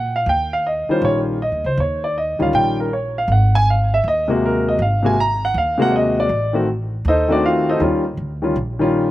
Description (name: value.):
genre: jazz piano trio.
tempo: 159 BPM.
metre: 4/4.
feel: swing 66% on 8ths.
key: unclear.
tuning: A4 = 439 Hz.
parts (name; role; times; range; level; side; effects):
warm grand piano; melody; 0.0-9.1 s; C3 to Bb5; -17 LUFS; equal; none.
upright bass; bass; 0.0-9.1 s; Ab1 to Bb2; -22 LUFS; equal; none.
room: little or no reverb.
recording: recorded outdoors, with no room sound.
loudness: -16 LUFS.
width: side -15 dB against mid.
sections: 0.0-9.1 A section.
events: none.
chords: 0.3 Eb9; 3.3 Ab9; 6.3 Adim7; 7.8 Eb9.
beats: | 0.27 0.64 1.02 1.40 | 1.77 2.15 2.53 2.90 | 3.28 3.66 4.03 4.41 | 4.79 5.16 5.54 5.92 | 6.29 6.67 7.04 7.42 | 7.80 8.18 8.55 8.93.